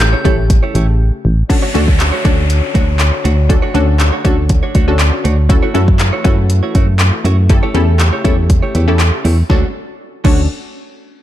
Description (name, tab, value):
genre	dance-pop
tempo	120 BPM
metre	4/4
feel	straight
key	D major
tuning	A4 = 440 Hz
part	soft struck synth lead	melody	0.0-0.5 s	G6	-23 LUFS	equal	chorus, dub echo
part	punchy chord stab	accompaniment	0.0-10.5 s	A3 to A4	-20 LUFS	left 2 dB	chorus, sidechain pumping
part	dark French horn section	sustained chords	0.0-9.7 s	C#3 to C#5	-26 LUFS	left 4 dB	sidechain pumping
part	direct-recorded clean electric guitar	riff	0.0-10.4 s	A3 to C#5	-24 LUFS	right 5 dB	wide subtle chorus
part	solid FM bass	bass	0.0-10.5 s	A1 to F#2	-12 LUFS	equal	sidechain pumping
part	deep house drum kit	drums	0.0-10.4 s	crash cymbal, handclaps, hi-hat, kick drum, snare drum	-14 LUFS	equal	overdrive
part	downlifter	sound effects	1.5-5.5 s	none	-26 LUFS	left 1 dB	none
room	digital ambience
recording	dark, warm production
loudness	-10 LUFS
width	side -13 dB against mid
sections	0.0-1.5 A section; 1.5-9.5 B section; 9.5-11.2 C section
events	break 1.0-1.5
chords	0.0 A7; 1.5 Dmaj7; 5.5 F#m7; 7.5 A7/E; 9.5 Dmaj7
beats	0.00 0.50 1.00 | 1.50 2.00 2.50 3.00 | 3.50 4.00 4.50 5.00 | 5.50 6.00 6.50 7.00 | 7.50 8.00 8.50 9.00 | 9.50 10.00